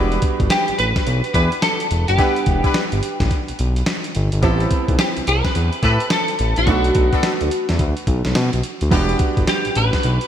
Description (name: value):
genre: R&B, new jack swing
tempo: 107 BPM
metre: 4/4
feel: swing 63% on 16ths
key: E minor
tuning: A4 = 445 Hz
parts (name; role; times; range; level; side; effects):
- warm concert grand piano; accompaniment; 0.0-10.3 s; F#3 to F#5; -26 LUFS; right 5 dB; none
- clear horn section; stabs; 0.0-9.2 s; B3 to B4; -28 LUFS; left 3 dB; ping-pong delay
- smooth synth bass; bass; 0.0-10.2 s; E1 to B2; -19 LUFS; equal; none
- dusty soul sampler-style drum kit; drums; 0.1-10.3 s; hi-hat, kick drum, snare drum; -21 LUFS; equal; gated reverb
- clean electric guitar; melody; 0.5-10.3 s; F#4 to B4; -21 LUFS; equal; ensemble chorus, ping-pong delay
room: light reverb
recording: bright 1980s-style digital production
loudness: -16 LUFS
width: side -10 dB against mid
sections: 0.0-10.3 A section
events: none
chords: 0.0 Em7; 4.4 Am7; 6.7 Bm7; 8.9 Em7